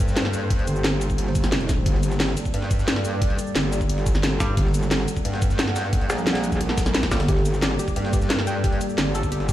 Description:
dark technical drum and bass; 177 BPM; 4/4; straight; G harmonic minor; A4 = 440 Hz
dark analog pad; sustained chords; 0.0-9.5 s; G3 to F#5; -29 LUFS; equal; chorus, phaser, sidechain pumping
metallic wobble bass; bass; 0.0-9.5 s; G1 to G2; -24 LUFS; equal; distortion, chorus, overdrive
breakbeat sampler-style drum kit; drums; 0.0-9.5 s; hi-hat, snare drum; -36 LUFS; equal; high-pass filter on hats, high-pass filter on snare, high-pass filter on room
drum and bass drum kit; drums; 0.0-9.5 s; hi-hat, shaker, snare drum; -26 LUFS; equal
electronic kick drum; drums; 0.0-9.5 s; -23 LUFS; equal
metallic wobble bass; bass; 4.4-7.3 s; G1 to G2; -23 LUFS; equal; chorus
soft round pluck; arpeggios; 7.3-9.5 s; G4 to G5; -30 LUFS; left 1 dB; chorus, cassette tape, sidechain pumping, dub echo
light reverb, digital ambience; played on a big sound system in a bare room, stone room reverb; -20 LUFS; side -13 dB against mid
0.0-9.5 A section
0.0 Gmadd9

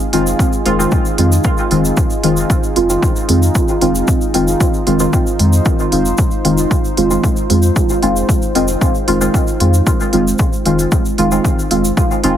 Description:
dub techno; 114 BPM; 4/4; straight; F minor; A4 = 440 Hz
deep dark ambient pad; sustained chords; 0.0-12.4 s; Eb4 to C5; -23 LUFS; right 1 dB; chorus, built-in reverb, sidechain pumping
deep mellow chord stab; stabs; 0.1-12.4 s; Eb3 to F4; -15 LUFS; equal; chorus, phaser, sidechain pumping, dub echo
warm sub bass; bass; 0.1-12.4 s; F1 to F2; -17 LUFS; equal; sidechain pumping
electronic hi-hat; drums; 0.1-12.3 s; -20 LUFS; right 1 dB
egg shaker; percussion; 0.3-12.2 s; -25 LUFS; equal
electronic kick drum; drums; 0.4-12.1 s; -16 LUFS; equal
light reverb, digital ambience; heavily compressed radio sound, multiband compression; -12 LUFS; side -10 dB against mid
0.0-12.4 A section
0.0 Fm7

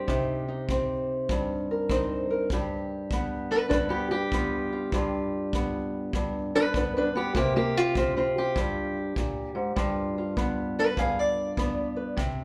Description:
acoustic country blues, solo or duo; 99 BPM; 4/4; swing 64% on 8ths; A4 = 440 Hz
fingerpicked steel-string acoustic guitar; melody; 0.0-12.4 s; G2 to F5; -29 LUFS; equal; plate reverb
kick drum; drums; 0.1-12.4 s; -35 LUFS; equal
moderate studio reverb, RT60 0.6 s; -28 LUFS; mono
0.0-12.2 A section
0.0 Cm7; 2.5 G7; 7.3 C5; 9.8 G7

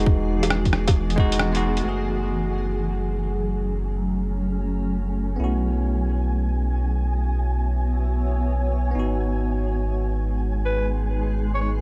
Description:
future garage; free time; F# dorian; A4 = 441 Hz
bell-like tine electric piano; accompaniment; 0.0-11.8 s; G#3 to G#4; -32 LUFS; equal; sidechain pumping, tape echo
granular cloud pad; sustained chords; 0.0-11.8 s; E3 to E5; -32 LUFS; equal; built-in reverb, sidechain pumping
warm sub bass; bass; 0.0-11.8 s; E1 to B1; -26 LUFS; equal; sidechain pumping
electronic kick drum; drums; 0.1-1.3 s; -22 LUFS; equal; small room reverb
lo-fi sampler-style drum kit; drums; 0.4-1.8 s; hi-hat, rim click, woodblock; -30 LUFS; equal; small room reverb
flickering grainy texture; texture; 2.6-11.8 s; G#5; -40 LUFS; equal; built-in reverb
raspy alto saxophone; melody; 10.7-11.7 s; B4 to C#5; -31 LUFS; equal; analog delay
little or no reverb; dark, warm production; -24 LUFS; mono
0.0-1.8 A section; 1.8-11.8 B section
band accent 1.4
0.0 Emaj7; 1.8 F#madd9; 5.4 Bsus4; 9.0 G#m7

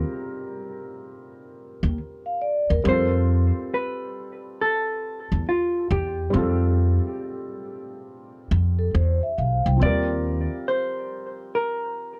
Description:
lo-fi hip hop; 69 BPM; 4/4; swing 65% on 16ths; A4 = 441 Hz
felt-muted upright piano; accompaniment; 0.0-12.2 s; F3 to Bb4; -32 LUFS; equal; low-pass filter
upright bass; bass; 0.0-10.5 s; Cb2 to F2; -24 LUFS; equal
vibraphone with soft mallets; second line; 2.3-3.1, 8.8-10.1 s; A4 to F5; -30 LUFS; equal; low-pass filter
hollow-body jazz guitar; melody; 2.9-12.2 s; F4 to D5; -29 LUFS; equal; low-pass filter, analog delay
little or no reverb; dark, warm production; -24 LUFS; mono
0.0-12.2 A section
0.0 Ebadd9 (rootless); 2.9 Fadd9; 9.8 Ebmaj9

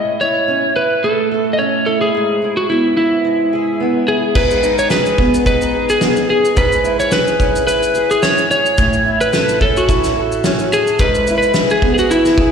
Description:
acoustic pop; 108 BPM; 4/4; swing 55% on 16ths; A4 = 440 Hz
electric slide guitar; melody; 0.0-12.5 s; E4 to D#5; -15 LUFS; equal; slapback echo
fingerpicked acoustic archtop guitar; accompaniment; 0.0-12.5 s; G#2 to A4; -18 LUFS; right 1 dB; double-tracked left and right, slapback echo
loose indie drum kit; drums; 4.4-12.5 s; crash cymbal, kick drum, shaker, snare drum; -18 LUFS; equal
moderate lush hall reverb, RT60 1.8 s, studio ambience; live gig heard through the venue's PA, recital hall reverb; -12 LUFS; side -6 dB against mid
0.0-4.4 A section; 4.4-12.5 B section
0.0 A; 2.1 E/G#; 4.4 G#m; 6.6 C#m/G#; 8.8 A; 11.0 E/G#

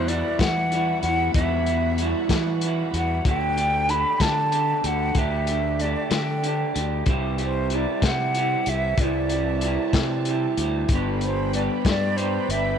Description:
psychedelic rock; 63 BPM (dotted quarters); 6/8; straight; A4 = 441 Hz
breathy concert flute; melody; 0.0-12.8 s; C5 to B5; -26 LUFS; right 1 dB; tape echo
dark studio string section; sustained chords; 0.0-12.8 s; G4 to B5; -37 LUFS; right 12 dB
electric guitar through a small old amp; riff; 0.0-12.8 s; E2 to G4; -26 LUFS; equal; flanger
fuzz fingered electric bass; bass; 0.0-12.8 s; G1 to E3; -26 LUFS; equal; overdrive
tanpura; drone; 0.0-6.4 s; E2 to E3; -45 LUFS; left 2 dB
crunchy breakbeat drum kit; drums; 0.1-12.6 s; hi-hat, kick drum, snare drum; -25 LUFS; left 2 dB
light reverb, small room ambience; 1960s-style stereo; -20 LUFS; side -8 dB against mid
0.0-12.8 A section
0.0 Emadd9; 3.2 Dsus4; 7.1 C; 10.9 G

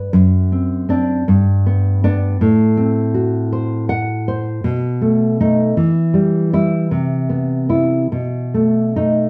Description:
romantic piece for solo classical guitar; 53 BPM (dotted quarters); 6/8; uneven beats, rubato; A4 = 440 Hz
nylon-string guitar; solo; 0.0-9.3 s; F#2 to F#5; -16 LUFS; equal; slapback echo
moderate booth ambience, RT60 0.2 s; dark, warm production; -17 LUFS; mono
0.0-9.3 A section
0.1 D7/F#; 1.3 G; 2.4 F#dim/A; 4.6 B7; 5.8 Em; 6.9 Cmaj7; 8.1 B7

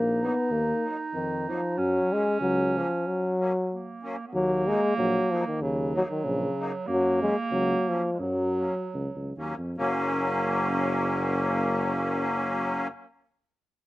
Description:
alpine folk, alpine dance band; 67-95 BPM; 2/4; swing 54% on 8ths; F# major; A4 = 439 Hz
warm euphonium; melody; 0.0-8.9 s; C#3 to B3; -26 LUFS; left 1 dB; slapback echo
warm clarinet; second line; 0.0-12.9 s; F#3 to D#4; -32 LUFS; right 4 dB; slapback echo
mellow tuba; bass; 0.0-12.9 s; F#1 to F#2; -31 LUFS; equal
musette accordion; accompaniment; 0.2-12.9 s; F#3 to D#4; -28 LUFS; left 1 dB; slapback echo
little or no reverb; recorded outdoors, with no room sound; -24 LUFS; side -17 dB against mid
0.0-4.3 A section; 4.3-9.8 B section; 9.8-13.3 C section
break 3.0-4.3; slowing down 6.9-9.8
0.0 D#m; 1.8 F#; 4.3 D#m; 6.9 F#

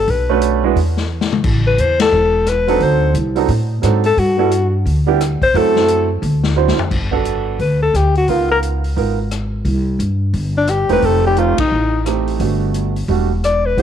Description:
jazz, small-group swing and bop; 175 BPM; 4/4; swing 63% on 8ths; A4 = 440 Hz
warm alto saxophone; melody; 0.0-13.8 s; D4 to D5; -16 LUFS; left 4 dB
upright bass; bass; 0.0-13.8 s; E1 to A2; -17 LUFS; equal
swinging big-band drum kit; drums; 0.1-13.8 s; crash cymbal, hi-hat, kick drum, ride cymbal, rim click, snare drum, toms; -23 LUFS; left 4 dB
warm upright piano; accompaniment; 0.3-13.8 s; F#3 to C5; -19 LUFS; right 14 dB
light reverb, studio reverb; 1960s-style stereo; -13 LUFS; side -9 dB against mid
0.0-6.9 A section; 6.9-13.8 B section
drum fill 1.1-1.4, 6.6-6.9; band accent 2.0, 11.5
0.1 Bm9; 0.8 N.C.; 1.4 Asus2; 2.8 D7b9; 4.2 G6; 5.5 F#m7b5; 6.2 D9; 6.9 Gmaj9; 8.3 C#13; 9.7 C5; 11.0 F9; 12.4 Gmaj7; 13.1 Em11

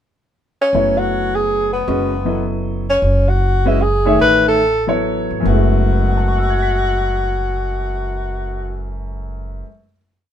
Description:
modal jazz; 134-157 BPM; 3/4; swing 65% on 8ths; F# dorian; A4 = 440 Hz
mellow tenor saxophone; melody; 0.6-8.9 s; B3 to B4; -18 LUFS; left 1 dB
warm grand piano; accompaniment; 0.7-10.0 s; F#2 to B6; -20 LUFS; left 1 dB
upright bass; bass; 0.7-9.6 s; F#1 to A1; -20 LUFS; right 1 dB
light reverb; minimal, uncompressed stereo recording; -14 LUFS; side -10 dB against mid
0.0-0.7 pickup bar; 0.7-5.5 A section; 5.5-8.2 final chord
slowing down 3.0-5.5
0.0 N.C.; 0.7 F#m11

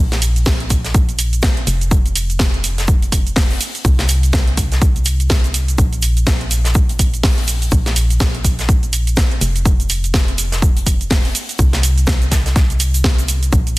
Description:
piano house; 124 BPM; 4/4; swing 59% on 16ths; A4 = 439 Hz
organ-like FM bass; bass; 0.0-13.8 s; F1 to C2; -18 LUFS; equal; sidechain pumping
big rock drum kit; drums; 0.1-13.7 s; hi-hat, shaker, snare drum; -28 LUFS; left 1 dB; sidechain pumping on hats, high-pass filter on hats, high-pass filter on snare, sidechain pumping on perc, high-pass filter on perc, high-pass filter on room
house drum kit; drums; 0.1-13.8 s; hi-hat, shaker, snare drum; -20 LUFS; right 1 dB
electronic kick drum; drums; 0.5-13.6 s; -15 LUFS; equal
little or no reverb; dense, heavily limited modern master; -13 LUFS; side -20 dB against mid
0.0-13.8 A section

